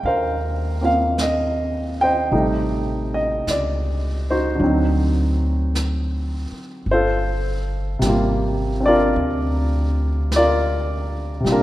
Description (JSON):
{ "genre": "jazz ballad", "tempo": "52 BPM", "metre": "4/4", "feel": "swing 69% on 8ths", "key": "G minor", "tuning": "A4 = 439 Hz", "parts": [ { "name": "warm baby grand piano", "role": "accompaniment", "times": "0.0-11.6 s", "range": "Bb2 to G5", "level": "-20 LUFS", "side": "equal", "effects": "none" }, { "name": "upright bass", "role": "bass", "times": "0.0-11.6 s", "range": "G1 to Eb2", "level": "-23 LUFS", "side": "equal", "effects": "none" }, { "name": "vintage brush drum kit", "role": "drums", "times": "0.0-11.6 s", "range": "brushed snare drum, hi-hat, snare drum", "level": "-33 LUFS", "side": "right 1 dB", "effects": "none" } ], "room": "moderate plate reverb, RT60 2.4 s", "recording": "rough home demo mix", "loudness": "-18 LUFS", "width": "side -15 dB against mid", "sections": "0.0-11.6 A section", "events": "none", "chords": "0.0 Ab69; 2.3 Am7b5; 4.6 D7b9; 6.9 Gm11", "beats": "0.04 1.19 | 2.33 3.47 4.61 5.75 | 6.88 8.03 9.17 10.31 | 11.46" }